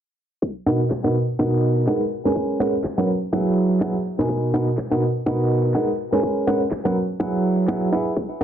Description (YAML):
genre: piano house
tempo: 124 BPM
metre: 4/4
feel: swing 56% on 16ths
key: B major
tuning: A4 = 440 Hz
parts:
  - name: electronic kick drum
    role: drums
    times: 0.4-8.3 s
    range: none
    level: -28 LUFS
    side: left 1 dB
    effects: high-pass filter on kick, high-pass filter on room
  - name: clear baby grand piano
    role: riff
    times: 0.7-8.4 s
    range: B2 to G#5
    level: -19 LUFS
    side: right 1 dB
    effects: sidechain pumping, low-pass filter, digital delay
  - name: electronic handclaps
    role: drums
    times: 0.9-7.8 s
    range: none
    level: -36 LUFS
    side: left 1 dB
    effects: low-pass filter on snare, low-pass filter on room
room: light reverb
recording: dense, heavily limited modern master, low-pass filter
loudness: -19 LUFS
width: side -9 dB against mid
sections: 0.4-8.4 A section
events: filter sweep on drum 0.4-8.4; filter sweep on grand piano 0.4-8.4; filter sweep 0.4-8.4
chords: 0.4 Bmaj7; 2.1 G#m11; 3.1 F#9sus4; 4.3 Bmaj7; 6.0 G#m11; 7.0 F#9sus4